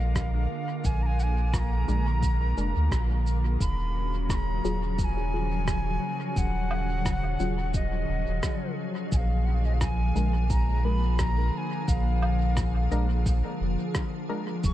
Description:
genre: ambient dub.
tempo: 87 BPM.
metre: 4/4.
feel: swing 56% on 16ths.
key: Eb minor.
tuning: A4 = 445 Hz.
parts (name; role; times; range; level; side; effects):
breathy wooden flute; melody; 0.0-14.7 s; Eb5 to Db6; -35 LUFS; equal; dub echo.
soft additive organ-like pad; sustained chords; 0.0-14.7 s; Db3 to Ab4; -33 LUFS; left 1 dB; ensemble chorus, built-in reverb.
soft dub sub bass; bass; 0.0-14.7 s; Eb1 to D2; -26 LUFS; equal; none.
electronic kick drum; drums; 0.2-14.7 s; none; -29 LUFS; equal; none.
electronic rim click, cabasa and woodblock; drums; 0.2-14.7 s; none; -38 LUFS; right 1 dB; overdrive, dub echo.
filtered dub chord stab; stabs; 1.9-14.5 s; Gb3 to Bb4; -37 LUFS; left 2 dB; chorus, dub echo.
drifting glass-harmonics texture; texture; 14.7 s; Bb3 to Ab4; -46 LUFS; right 1 dB; chorus, built-in reverb.
room: digital ambience.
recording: dark, warm production.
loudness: -24 LUFS.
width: side -13 dB against mid.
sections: 0.0-3.6 A section; 3.6-14.7 B section.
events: band accent 2.9-3.3.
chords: 0.0 Bb7; 3.6 Ebm11; 9.1 Bb7.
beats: 0.16 | 0.85 1.54 2.23 2.92 | 3.61 4.30 4.99 5.68 | 6.37 7.06 7.75 8.44 | 9.12 9.81 10.50 11.19 | 11.88 12.57 13.26 13.95 | 14.64.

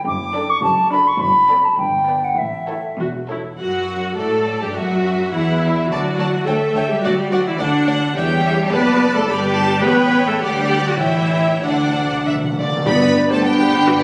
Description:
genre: quick classical-period movement for symphony orchestra.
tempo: 95-108 BPM.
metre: 2/4.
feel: rubato.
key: D major.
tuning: A4 = 440 Hz.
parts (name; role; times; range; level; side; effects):
concert flute; second line; 0.0-3.0, 12.9-14.0 s; B4 to D6; -19 LUFS; equal; none.
clear chamber cello section; bass; 0.1-14.0 s; E2 to B3; -25 LUFS; equal; none.
rich chamber double bass section; bass; 0.1-14.0 s; E1 to A2; -27 LUFS; equal; none.
clear studio violin section; melody; 0.3-14.0 s; B4 to B5; -29 LUFS; equal; none.
rich chamber violin section; second line; 0.3-14.0 s; E4 to B5; -26 LUFS; equal; none.
rich chamber viola section; accompaniment; 0.4-14.0 s; B3 to B4; -23 LUFS; equal; none.
timpani; percussion; 5.9-6.4, 11.6-13.7 s; G2 to D3; -29 LUFS; equal; none.
mellow French horn section; sustained chords; 12.9-14.0 s; A3 to D4; -20 LUFS; equal; none.
warm bassoon; accompaniment; 13.4-14.0 s; B3; -25 LUFS; equal; none.
room: wet concert hall reverb, RT60 2.4 s.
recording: recorded on a phone in the room, club reverb, compression.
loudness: -17 LUFS.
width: mono.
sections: 0.0-3.6 A section; 3.6-12.9 B section; 12.9-14.0 A section.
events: timpani fill 11.6-12.9.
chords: 0.1 D/F#; 1.2 D7/F#; 1.8 G; 2.4 A; 3.6 N.C.; 4.2 Gsus2; 4.8 Esus2; 5.9 D; 6.5 A7; 7.0 D; 8.2 C#dim/E; 8.7 D/F#; 9.3 G; 9.8 A7; 10.4 D; 11.0 A7; 11.6 D; 12.9 G.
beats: | 0.07 0.63 | 1.20 1.78 | 2.38 2.99 | 3.59 4.17 | 4.75 5.33 | 5.90 6.46 | 7.04 7.60 | 8.16 8.73 | 9.29 9.85 | 10.42 11.02 | 11.63 12.26 | 12.87 13.45 | 14.02.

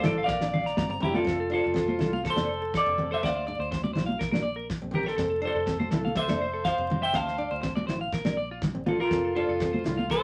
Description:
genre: highlife guitar band.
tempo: 122 BPM.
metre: 4/4.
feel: straight.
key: F major.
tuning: A4 = 442 Hz.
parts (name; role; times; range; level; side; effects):
semi-hollow electric guitar; melody; 0.0-10.2 s; E4 to A5; -30 LUFS; equal; spring reverb.
bright trumpet; second line; 0.0-10.2 s; E4 to F5; -38 LUFS; equal; none.
nylon-string guitar; accompaniment; 0.0-10.0 s; C4 to E4; -38 LUFS; equal; none.
electric guitar at the edge of break-up; arpeggios; 0.0-10.2 s; F4 to Bb5; -36 LUFS; equal; none.
fingered electric bass; bass; 0.0-10.2 s; F1 to D2; -40 LUFS; equal; none.
damped 70s drum kit; drums; 0.0-10.2 s; kick drum, snare drum; -35 LUFS; equal; none.
congas; percussion; 0.0-10.1 s; none; -33 LUFS; equal; none.
room: wet studio reverb, RT60 0.5 s.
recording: vinyl crackle.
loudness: -28 LUFS.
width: mono.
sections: 0.0-1.3 A section; 1.3-10.2 B section.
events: none.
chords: 0.3 Bb; 1.3 F; 3.2 Dm7; 4.2 Bb; 5.2 F; 7.1 Dm7; 8.1 Bb; 9.1 F.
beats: 0.29 0.78 | 1.27 1.76 2.24 2.73 | 3.22 3.71 4.20 4.69 | 5.18 5.67 6.16 6.65 | 7.14 7.64 8.13 8.62 | 9.11 9.60 10.09.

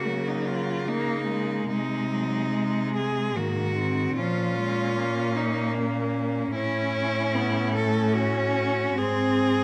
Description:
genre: classical, lyrical piece for cello ensemble.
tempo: 74 BPM.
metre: 3/4.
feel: rubato.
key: unclear.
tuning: A4 = 441 Hz.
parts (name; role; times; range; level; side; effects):
rich cello; melody; 0.0-9.6 s; Db4 to A4; -31 LUFS; equal; none.
rich cello; second line; 0.0-9.6 s; Gb3 to Db4; -34 LUFS; equal; none.
rich cello; accompaniment; 0.0-9.6 s; Eb3 to C#4; -31 LUFS; equal; none.
rich cello; bass; 0.0-9.6 s; Ab2 to Db3; -32 LUFS; equal; none.
room: moderate recital hall reverb, RT60 1.4 s.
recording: close, detailed microphones.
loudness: -26 LUFS.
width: mono.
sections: 0.0-9.6 A section.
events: none.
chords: 0.0 Ebm7/Db; 1.7 Ab/C; 4.2 Bbm; 6.5 A; 9.0 Ab.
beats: 0.07 0.88 | 1.71 2.55 3.37 | 4.17 4.96 5.75 | 6.55 7.35 8.16 | 8.98.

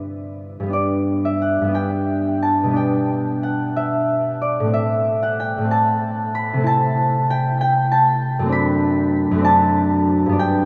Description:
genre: classical, solo harp piece.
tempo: 51-66 BPM (dotted quarters).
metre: 6/8.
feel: rubato.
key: G major.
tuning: A4 = 440 Hz.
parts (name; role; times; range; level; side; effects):
concert harp; solo; 0.0-10.7 s; F#2 to B5; -19 LUFS; equal; none.
room: wet huge ambient reverb, RT60 7.4 s.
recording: in a vast, echoing space.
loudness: -19 LUFS.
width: mono.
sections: 0.7-10.7 A section.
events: none.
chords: 0.0 G; 2.8 G/B; 4.7 Am; 6.7 Am/C; 8.5 D7/F#.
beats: | 0.73 1.75 | 2.78 3.77 | 4.75 5.71 | 6.65 7.60 | 8.52 9.45 | 10.39.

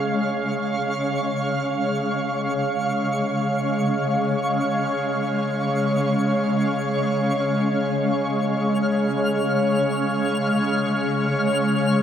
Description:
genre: ambient.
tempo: free time.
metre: none.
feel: none.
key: Db major.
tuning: A4 = 443 Hz.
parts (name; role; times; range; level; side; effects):
shimmering ambient pad; sustained chords; 0.0-12.0 s; Db3 to F5; -20 LUFS; equal; chorus, built-in reverb.
overtone-sweeping drone; drone; 1.4-12.0 s; Db3 to Db4; -34 LUFS; equal; none.
twinkling granular texture; texture; 0.0-12.0 s; Db6 to F6; -32 LUFS; right 1 dB; built-in reverb.
room: wet huge ambient reverb, RT60 7.4 s.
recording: none.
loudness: -20 LUFS.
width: side -9 dB against mid.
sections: 0.0-12.0 A section.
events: fade-in on synth texture 0.0-12.0.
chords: 0.0 Db.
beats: free time.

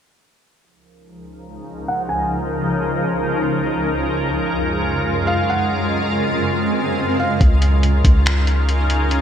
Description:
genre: hip hop, atmospheric cloud-rap.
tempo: 141 BPM.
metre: 4/4.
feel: half-time.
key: Db major.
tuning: A4 = 439 Hz.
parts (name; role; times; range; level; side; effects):
shimmering ambient pad; sustained chords; 1.4-9.2 s; Db2 to Bb4; -19 LUFS; equal; chorus, built-in reverb, sidechain pumping, low-pass filter.
felt-muted upright piano; melody; 1.9-2.3, 5.3-7.4 s; F5 to Ab5; -25 LUFS; right 1 dB; low-pass filter, digital delay.
swell; sound effects; 6.5-7.4 s; none; -27 LUFS; equal; none.
warm 808-style bass; bass; 7.4-9.2 s; Db2; -15 LUFS; equal; none.
lo-fi sampler-style drum kit; drums; 7.4-9.2 s; finger snaps, hi-hat, kick drum; -16 LUFS; equal; gated reverb.
room: moderate lush hall reverb, RT60 1.7 s, digital ambience.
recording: bright 1980s-style digital production.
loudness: -16 LUFS.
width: side -9 dB against mid.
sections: 0.6-7.4 A section; 7.4-9.2 B section.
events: filter sweep 0.6-7.4; swell 6.5-7.4.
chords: 0.6 Db69; 4.0 Gbmaj9; 7.4 Db69.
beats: | 0.60 1.02 1.45 1.88 | 2.30 2.73 3.15 3.58 | 4.00 4.43 4.86 5.28 | 5.71 6.13 6.56 6.98 | 7.41 7.83 8.26 8.69 | 9.11.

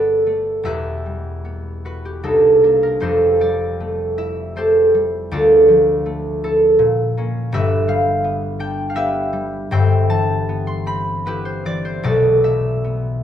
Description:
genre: classical, solo harp piece.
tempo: 74-85 BPM.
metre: 3/4.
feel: rubato.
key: G mixolydian.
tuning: A4 = 440 Hz.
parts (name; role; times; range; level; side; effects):
concert harp; solo; 0.0-13.2 s; E1 to C6; -15 LUFS; equal; none.
room: moderate recital hall reverb, RT60 1.6 s.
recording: none.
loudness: -15 LUFS.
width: side -10 dB against mid.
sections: 0.0-13.2 A section.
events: none.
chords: 0.0 Gmaj9; 0.7 Emadd9; 2.2 Cm9; 3.0 Fmaj9; 5.3 Dmadd9; 6.8 Bbm; 7.5 G6; 9.7 Am9/G; 12.0 Bm7.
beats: | 0.65 1.45 2.25 | 3.04 3.81 4.57 | 5.31 6.05 6.79 | 7.51 8.23 8.95 | 9.71 10.48 11.27 | 12.05 12.85.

